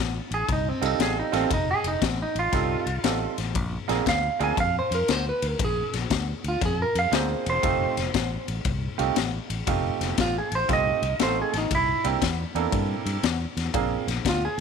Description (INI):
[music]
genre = electric blues shuffle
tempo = 118 BPM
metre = 4/4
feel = swing 66% on 8ths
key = F mixolydian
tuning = A4 = 442 Hz
[part]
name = fingered electric bass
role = bass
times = 0.0-14.6 s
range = E1 to G2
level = -29 LUFS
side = left 1 dB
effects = none
[part]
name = clean electric guitar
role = melody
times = 0.3-14.6 s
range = C4 to Ab5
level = -26 LUFS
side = right 2 dB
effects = none
[part]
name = raw garage drum kit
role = drums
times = 0.3-14.4 s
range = kick drum, ride cymbal, snare drum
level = -28 LUFS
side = left 6 dB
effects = none
[part]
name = bright upright piano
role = accompaniment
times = 0.8-14.0 s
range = G3 to A4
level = -29 LUFS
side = right 14 dB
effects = none
[sound]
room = light reverb, small room reverb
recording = 1960s-style stereo with parts hard left and right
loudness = -23 LUFS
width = side -6 dB against mid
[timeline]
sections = 0.0-14.6 A section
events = clean electric guitar solo 0.0-14.6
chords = 0.0 F9; 3.5 Bb9; 7.6 F9; 11.7 C9; 13.7 Bb9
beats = 0.48 0.99 | 1.50 2.02 2.53 3.04 | 3.55 4.06 4.57 5.08 | 5.59 6.10 6.61 7.12 | 7.63 8.14 8.65 9.16 | 9.67 10.18 10.69 11.20 | 11.71 12.21 12.72 13.23 | 13.74 14.25